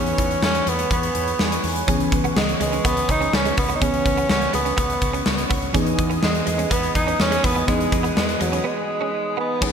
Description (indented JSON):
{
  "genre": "1980s-style pop",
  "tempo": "124 BPM",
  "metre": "4/4",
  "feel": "straight",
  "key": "E major",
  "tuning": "A4 = 440 Hz",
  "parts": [
    { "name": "breathy tenor saxophone", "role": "melody", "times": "0.0-9.7 s", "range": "F#3 to D#4", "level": "-24 LUFS", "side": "right 1 dB", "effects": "ping-pong delay" },
    { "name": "mellow FM electric piano", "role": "accompaniment", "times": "0.0-9.7 s", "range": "E3 to G#4", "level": "-27 LUFS", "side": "left 1 dB", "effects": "chorus, phaser" },
    { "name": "chorused pulse-width pad", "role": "sustained chords", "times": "0.0-9.7 s", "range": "B4 to D#6", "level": "-29 LUFS", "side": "right 1 dB", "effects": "none" },
    { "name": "woody fretless electric bass", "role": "bass", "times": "0.0-9.7 s", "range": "C#2 to E2", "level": "-28 LUFS", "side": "equal", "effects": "none" },
    { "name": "big rock drum kit", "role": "drums", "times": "0.1-9.7 s", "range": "crash cymbal, hi-hat, kick drum, snare drum", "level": "-22 LUFS", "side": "equal", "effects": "gated reverb" },
    { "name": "direct-recorded clean electric guitar", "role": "riff", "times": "1.9-9.7 s", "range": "G#3 to C#4", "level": "-30 LUFS", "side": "right 7 dB", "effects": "ensemble chorus, ping-pong delay" }
  ],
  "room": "moderate lush hall reverb, RT60 1.7 s",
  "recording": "bright 1980s-style digital production",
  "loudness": "-18 LUFS",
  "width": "side -7 dB against mid",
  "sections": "0.0-9.6 A section",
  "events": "break 8.7-9.6",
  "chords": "0.0 Emaj7; 1.9 C#m7; 5.7 Emaj7"
}